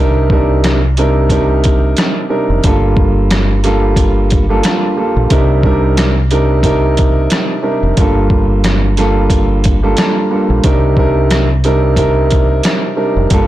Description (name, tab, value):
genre	hip hop, boom-bap hip-hop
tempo	90 BPM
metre	4/4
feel	swing 56% on 16ths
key	C dorian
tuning	A4 = 440 Hz
part	dark concert grand piano	accompaniment	0.0-13.5 s	G2 to Bb4	-14 LUFS	right 1 dB	high-pass filter, low-pass filter
part	deep dub fingered electric bass	bass	0.0-13.5 s	F1 to C2	-14 LUFS	equal	none
part	trip hop sampler-style drum kit	drums	0.3-13.5 s	hi-hat, kick drum, rim click, snare drum	-14 LUFS	equal	overdrive
room	little or no reverb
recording	blown-out, overdriven recording, overdrive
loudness	-10 LUFS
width	side -14 dB against mid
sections	0.0-13.5 A section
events	none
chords	0.0 Cm7; 2.6 Gm9; 5.3 Cm7; 8.0 Gm9; 10.6 Cm7